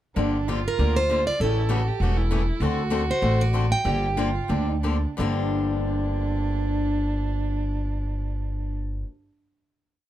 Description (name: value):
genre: acoustic string swing (jazz manouche)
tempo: 169-197 BPM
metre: 4/4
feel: swing 60% on 8ths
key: G minor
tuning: A4 = 440 Hz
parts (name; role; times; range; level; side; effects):
- warm violin; second line; 0.2-8.8 s; D4 to G4; -30 LUFS; right 5 dB; none
- picked swing-style acoustic guitar; accompaniment; 0.2-9.1 s; G2 to A4; -29 LUFS; left 4 dB; none
- upright bass; bass; 0.2-9.0 s; E1 to D2; -25 LUFS; equal; none
- picked plugged-in steel-string acoustic guitar; melody; 0.7-4.8 s; A4 to G5; -26 LUFS; right 2 dB; none
room: light reverb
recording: dark, warm production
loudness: -22 LUFS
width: side -12 dB against mid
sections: 0.2-5.2 A section; 5.2-8.0 final chord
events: slowing down 2.6-5.2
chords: 0.2 Gm7; 1.4 A7; 2.6 D7; 3.8 Gm7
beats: | 0.17 0.47 0.78 1.09 | 1.39 1.70 2.00 2.31 | 2.61 2.91 3.22 3.53 | 3.85 4.17 4.50 4.83 | 5.18 5.54 5.89 6.24 | 6.60 6.95 7.30 7.66